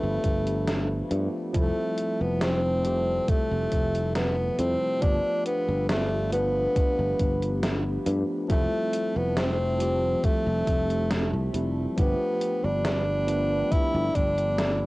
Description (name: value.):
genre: vaporwave.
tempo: 69 BPM.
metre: 4/4.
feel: straight.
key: F lydian.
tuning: A4 = 438 Hz.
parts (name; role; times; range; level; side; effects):
warm tenor saxophone; melody; 0.0-14.9 s; A3 to E4; -27 LUFS; equal; cassette tape, tape echo.
tine electric piano; accompaniment; 0.0-14.9 s; C3 to B4; -31 LUFS; equal; medium stereo tremolo, analog chorus, cassette tape.
warbly tape-like pad; sustained chords; 0.0-14.9 s; F3 to B5; -40 LUFS; equal; none.
sustaining fretless electric bass; bass; 0.0-14.9 s; F1 to G2; -28 LUFS; equal; none.
electronic kick drum; drums; 0.2-14.3 s; none; -26 LUFS; equal; cassette tape.
gated 80s digital drum machine; drums; 0.2-14.8 s; hi-hat, snare drum; -30 LUFS; equal; gated reverb, gated reverb snare, cassette tape.
room: little or no reverb.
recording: home recording on cassette, nothing above 10.3 kHz.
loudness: -23 LUFS.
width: side -20 dB against mid.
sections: 0.0-14.9 A section.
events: none.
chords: 0.0 G7; 1.5 Fmaj7; 5.0 G7; 8.5 Fmaj7; 12.0 G7.